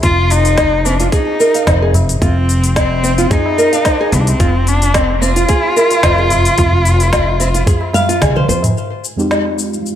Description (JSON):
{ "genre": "organic downtempo", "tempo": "110 BPM", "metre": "4/4", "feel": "swing 54% on 16ths", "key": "F dorian", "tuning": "A4 = 437 Hz", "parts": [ { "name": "warm cello", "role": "melody", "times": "0.0-8.2 s", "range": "C4 to F4", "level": "-16 LUFS", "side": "left 2 dB", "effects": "ping-pong delay" }, { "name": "nylon-string guitar", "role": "arpeggios", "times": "0.0-8.6 s", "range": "C4 to F5", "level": "-17 LUFS", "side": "right 2 dB", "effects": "low-pass filter, ping-pong delay" }, { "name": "upright bass", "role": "bass", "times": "0.0-8.7 s", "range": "F1 to F2", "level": "-15 LUFS", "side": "equal", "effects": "tube saturation, sidechain pumping" }, { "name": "electronic kick drum", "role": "drums", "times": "0.0-8.3 s", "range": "none", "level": "-17 LUFS", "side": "equal", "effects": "overdrive" }, { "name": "organic electronic drum kit", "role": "drums", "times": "0.0-10.0 s", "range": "cabasa, hi-hat, snare drum, toms", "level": "-19 LUFS", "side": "left 1 dB", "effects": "overdrive" }, { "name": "tabla", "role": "percussion", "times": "0.9-8.7 s", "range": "none", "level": "-21 LUFS", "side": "equal", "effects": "none" }, { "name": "granular cloud pad", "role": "sustained chords", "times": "9.5-10.0 s", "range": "Ab3 to F5", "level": "-24 LUFS", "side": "right 2 dB", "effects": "built-in reverb, sidechain pumping" }, { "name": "deep mellow chord stab", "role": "accompaniment", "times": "9.2-10.0 s", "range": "F2 to G4", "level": "-18 LUFS", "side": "equal", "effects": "chorus, sidechain pumping, ping-pong delay" } ], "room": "moderate plate reverb, RT60 1.6 s, small room ambience", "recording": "dreamy mix soaked in reverb", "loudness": "-11 LUFS", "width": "side -10 dB against mid", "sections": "0.0-8.8 A section; 8.8-10.0 B section", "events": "filter sweep on nylon-string guitar 0.0-8.8; drum fill 7.9-8.8", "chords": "0.0 Fm7" }